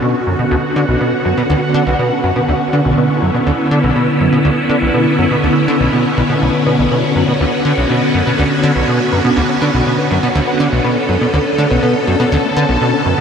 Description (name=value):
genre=ambient, sequencer-driven space music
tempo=122 BPM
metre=4/4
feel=straight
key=B minor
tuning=A4 = 439 Hz
part: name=phased string machine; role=sustained chords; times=0.0-13.2 s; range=D3 to A4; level=-14 LUFS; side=equal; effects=ensemble chorus, phaser
part: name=soft round pluck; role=arpeggios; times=0.0-13.1 s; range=A3 to B4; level=-28 LUFS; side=left 2 dB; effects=none
part: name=plucky analog bass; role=riff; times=0.0-13.2 s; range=B1 to D3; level=-16 LUFS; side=equal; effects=lush chorus, analog delay
room=wet huge ambient reverb, RT60 8.8 s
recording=none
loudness=-12 LUFS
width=side -7 dB against mid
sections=0.0-13.2 A section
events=none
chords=0.0 Bmadd9